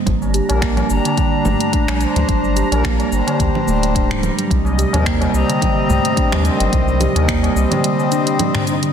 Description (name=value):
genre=organic downtempo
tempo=108 BPM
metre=4/4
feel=swing 55% on 16ths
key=G minor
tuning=A4 = 440 Hz
part: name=steel tongue drum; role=arpeggios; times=0.0-8.9 s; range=D3 to G4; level=-20 LUFS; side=right 4 dB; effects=ping-pong delay
part: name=warm analog pad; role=sustained chords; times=0.1-8.9 s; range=C3 to Bb5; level=-24 LUFS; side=right 1 dB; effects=chorus, sidechain pumping
part: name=warm sub bass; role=bass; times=0.1-7.7 s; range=D1 to Eb2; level=-19 LUFS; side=equal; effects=sidechain pumping
part: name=electronic kick drum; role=drums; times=0.1-7.4 s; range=none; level=-20 LUFS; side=left 1 dB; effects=none
part: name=organic electronic drum kit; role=drums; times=0.1-8.9 s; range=cabasa, congas, finger snaps, hi-hat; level=-24 LUFS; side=right 2 dB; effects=soft clipping on snare
part: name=tabla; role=percussion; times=0.2-8.6 s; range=none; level=-28 LUFS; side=left 3 dB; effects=none
part: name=pedal harmonium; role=accompaniment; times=0.5-8.8 s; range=Eb3 to Bb5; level=-22 LUFS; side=left 5 dB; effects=sidechain pumping, ping-pong delay
room=moderate recital hall reverb, RT60 1.5 s, digital ambience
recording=dense, heavily limited modern master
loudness=-14 LUFS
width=side -8 dB against mid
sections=0.0-8.9 A section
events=none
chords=0.1 Gm; 4.5 Cm7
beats=| 0.06 0.62 1.17 1.73 | 2.28 2.84 3.40 3.95 | 4.51 5.06 5.62 6.17 | 6.73 7.28 7.84 8.39